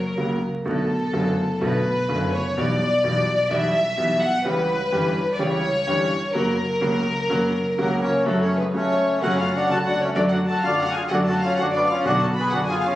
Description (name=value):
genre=tango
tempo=127 BPM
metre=4/4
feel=rubato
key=F# harmonic minor from 8.3 s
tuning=A4 = 441 Hz
part: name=warm chamber violin section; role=second line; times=0.0-13.0 s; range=A4 to B5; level=-24 LUFS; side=left 1 dB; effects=none
part: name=warm concert grand piano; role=accompaniment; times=0.2-12.7 s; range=F#1 to G4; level=-23 LUFS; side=equal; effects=none
part: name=bandoneon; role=melody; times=7.8-13.0 s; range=F#3 to B4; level=-22 LUFS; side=equal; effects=none
room=wet large studio reverb, RT60 1.3 s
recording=recorded on a phone in the room, club reverb, vinyl crackle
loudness=-19 LUFS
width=side -14 dB against mid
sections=0.0-8.3 A section; 8.3-13.0 B section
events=violin section solo 0.0-8.3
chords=0.0 F#; 0.7 Bm7; 2.6 Emadd9/B; 4.5 C#dim; 6.3 F#; 8.3 F#m; 10.2 D/F#; 12.1 Bm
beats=0.18 | 0.66 1.13 1.61 2.09 | 2.56 3.03 3.51 3.98 | 4.45 4.92 5.40 5.87 | 6.34 6.82 7.30 7.78 | 8.26 8.73 9.21 9.68 | 10.16 10.63 11.11 11.58 | 12.05 12.53